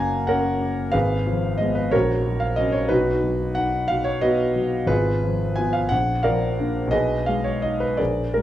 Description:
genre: classical, romantic character piece for solo piano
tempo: 60 BPM (dotted quarters)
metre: 6/8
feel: uneven beats, rubato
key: unclear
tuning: A4 = 440 Hz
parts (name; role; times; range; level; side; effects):
- warm concert grand piano; solo; 0.0-8.4 s; Gb1 to Bb5; -20 LUFS; equal; none
room: moderate large studio reverb, RT60 1.1 s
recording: dark, warm production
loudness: -20 LUFS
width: side -12 dB against mid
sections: 0.0-8.4 A section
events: none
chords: 0.0 Gb; 0.9 Fdim/Ab; 1.9 Gb/Bb; 2.9 B; 4.9 Fdim/Ab; 5.9 Bb; 6.9 Abm/Cb

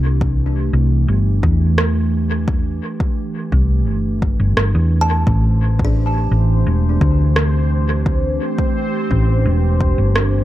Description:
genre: ambient dub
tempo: 86 BPM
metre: 4/4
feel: straight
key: A minor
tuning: A4 = 439 Hz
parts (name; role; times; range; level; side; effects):
- warbly tape-like pad; sustained chords; 0.0-10.4 s; E3 to G4; -24 LUFS; right 3 dB; chorus, built-in reverb
- kalimba; arpeggios; 0.0-8.7 s; D4 to A5; -28 LUFS; left 3 dB; analog delay
- hollow-body short-scale fingered electric bass; bass; 0.0-10.4 s; E1 to E2; -15 LUFS; equal; none
- electronic kick drum; drums; 0.2-9.9 s; none; -19 LUFS; equal; overdrive
- electronic rim click; drums; 1.8-10.3 s; none; -22 LUFS; right 1 dB; overdrive, dub echo
- bubbling stepped-filter texture; texture; 5.6-10.4 s; C4 to C5; -26 LUFS; left 2 dB; chorus, built-in reverb
room: little or no reverb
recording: echo-heavy mix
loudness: -14 LUFS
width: side -14 dB against mid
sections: 0.0-10.4 A section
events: none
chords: 0.0 C; 5.3 Am7

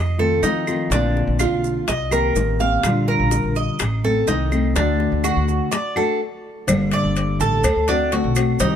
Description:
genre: latin, Cuban son and guajira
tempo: 125 BPM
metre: 4/4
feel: straight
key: unclear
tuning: A4 = 440 Hz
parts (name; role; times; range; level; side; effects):
- Cuban tres; arpeggios; 0.0-8.8 s; D4 to F5; -22 LUFS; right 2 dB; none
- upright bass; bass; 0.0-8.8 s; G1 to F3; -22 LUFS; equal; none
- nylon-string guitar; accompaniment; 0.2-8.8 s; C3 to A4; -22 LUFS; left 3 dB; none
- bongos and cowbell; percussion; 0.4-8.8 s; none; -27 LUFS; left 4 dB; none
- maracas; percussion; 0.4-8.8 s; none; -31 LUFS; right 11 dB; none
- claves; percussion; 0.7-8.6 s; none; -31 LUFS; right 1 dB; none
room: light reverb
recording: none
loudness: -17 LUFS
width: side -9 dB against mid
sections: 0.0-6.7 A section; 6.7-8.8 B section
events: stop 6.2-6.7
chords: 0.0 F7; 0.9 Bbadd9; 1.9 Cm7; 2.8 Gm7/Bb; 3.8 Adim; 4.8 D; 6.7 Gmadd9; 7.6 D7

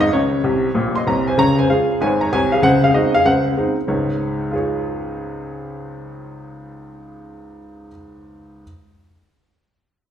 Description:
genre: jazz, stride piano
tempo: 191 BPM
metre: 4/4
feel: swing 64% on 8ths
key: Db major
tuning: A4 = 438 Hz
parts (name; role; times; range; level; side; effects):
- clear upright piano; solo; 0.0-8.6 s; Ab1 to C6; -17 LUFS; equal; none
room: wet large studio reverb, RT60 1.4 s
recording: band playing live in one room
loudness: -15 LUFS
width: side -9 dB against mid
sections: 0.0-1.4 A section; 1.4-3.9 B section; 3.9-6.4 C section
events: upright piano fill 0.4-1.4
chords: 0.1 Bbmadd9; 1.4 Db; 2.6 Ab7/Db; 3.9 Db

